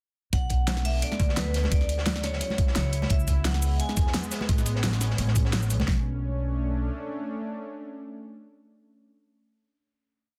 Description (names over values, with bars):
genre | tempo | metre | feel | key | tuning
liquid drum and bass | 173 BPM | 4/4 | swing 54% on 16ths | B dorian | A4 = 440 Hz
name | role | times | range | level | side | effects
vibraphone with hard mallets | melody | 0.3-4.1 s | B4 to G#5 | -37 LUFS | equal | delay
lush unison pad | sustained chords | 0.7-9.1 s | C#3 to E4 | -38 LUFS | equal | chorus, sidechain pumping
upright bass | bass | 0.3-6.9 s | A1 to E2 | -29 LUFS | equal | tube saturation
crunchy breakbeat drum kit | drums | 0.3-5.9 s | hi-hat, snare drum | -40 LUFS | equal | high-pass filter on hats, high-pass filter on snare, high-pass filter on room
pop drum kit | drums | 0.3-6.0 s | kick drum, snare drum | -27 LUFS | equal | overdrive
pop drum kit | drums | 0.3-5.8 s | cabasa, hi-hat, snare drum | -33 LUFS | equal | overdrive
congas | percussion | 0.7-5.9 s | none | -38 LUFS | equal | none
room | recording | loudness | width
small room reverb | dense, heavily limited modern master | -26 LUFS | mono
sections
0.3-5.9 drop; 5.9-8.7 final chord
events
drop 0.3-5.9; band accent 5.5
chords
0.3 Bm7; 1.7 Dmaj7; 2.9 C#m7; 4.3 Amaj9; 5.9 Bm7